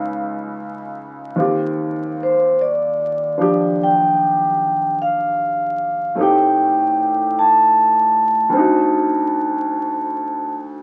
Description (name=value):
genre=jazz ballad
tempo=50 BPM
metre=4/4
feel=swing 68% on 8ths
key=unclear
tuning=A4 = 441 Hz
part: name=clear baby grand piano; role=accompaniment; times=0.0-10.8 s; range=C#2 to G4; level=-24 LUFS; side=equal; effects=none
part: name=vibraphone with medium mallets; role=melody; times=2.2-10.5 s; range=C5 to A5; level=-18 LUFS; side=equal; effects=none
room=wet studio reverb, RT60 0.5 s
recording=very old 78 rpm record, vinyl crackle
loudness=-18 LUFS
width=mono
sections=0.0-10.8 A section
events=none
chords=0.0 C#9; 1.4 Eb69; 6.2 Am7b5; 8.5 D7b9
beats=0.15 | 1.36 2.57 3.77 4.97 | 6.16 7.35 8.54 9.73